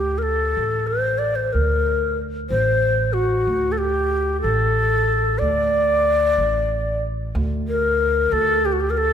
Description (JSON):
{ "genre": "Persian modal ensemble", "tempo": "62 BPM (dotted quarters)", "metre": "6/8", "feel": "straight", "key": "D dastgah homayun", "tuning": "A4 = 440 Hz", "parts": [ { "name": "breathy ney", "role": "melody", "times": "0.0-9.1 s", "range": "F#4 to D5", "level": "-19 LUFS", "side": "left 1 dB", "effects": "none" }, { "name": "upright bass", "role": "bass", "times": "0.0-9.1 s", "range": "A1 to D2", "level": "-24 LUFS", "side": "right 1 dB", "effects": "none" } ], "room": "moderate concert hall reverb, RT60 2.3 s", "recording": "recorded in a church or concert hall", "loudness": "-18 LUFS", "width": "side -8 dB against mid", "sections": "0.0-7.3 A section; 7.3-9.1 B section", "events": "none", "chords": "none" }